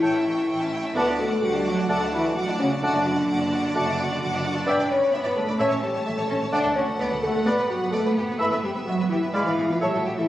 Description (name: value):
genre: quick classical-period movement for symphony orchestra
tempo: 128 BPM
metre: 4/4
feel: rubato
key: D major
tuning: A4 = 439 Hz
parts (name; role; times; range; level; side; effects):
- rich chamber violin section; melody; 0.0-10.3 s; E5 to D6; -36 LUFS; left 1 dB; none
- clear clarinet; second line; 0.0-10.0 s; C#5 to E5; -34 LUFS; left 1 dB; none
- rich chamber violin section; second line; 0.0-10.2 s; F#4 to G5; -31 LUFS; left 1 dB; none
- silver concert flute; second line; 0.0-10.0 s; G5 to B5; -30 LUFS; equal; none
- warm oboe; second line; 0.0-10.0 s; E5 to G5; -35 LUFS; right 1 dB; none
- mellow bassoon; accompaniment; 0.0-10.0 s; E3 to B3; -34 LUFS; right 1 dB; none
- rich studio viola section; accompaniment; 0.0-10.2 s; A3 to F#4; -33 LUFS; right 1 dB; none
- warm French horn section; sustained chords; 0.0-10.3 s; C#4 to D5; -25 LUFS; left 1 dB; none
- rich chamber cello section; bass; 0.0-10.3 s; C#3 to D4; -28 LUFS; right 2 dB; none
- warm chamber double bass section; bass; 0.0-10.2 s; F#1 to D2; -33 LUFS; right 2 dB; none
- timpani; percussion; 5.6-6.2 s; A2; -42 LUFS; left 2 dB; none
room: wet scoring stage reverb, RT60 1.9 s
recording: recorded on a phone in the room, studio reverb, compression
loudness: -21 LUFS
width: side -14 dB against mid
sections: 0.0-10.3 A section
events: none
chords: 0.0 A7; 1.0 D; 2.8 D/F#; 4.7 G6; 5.6 A; 6.5 D; 7.5 Gmaj7; 8.4 Em/G; 9.3 G#dim7; 9.8 A7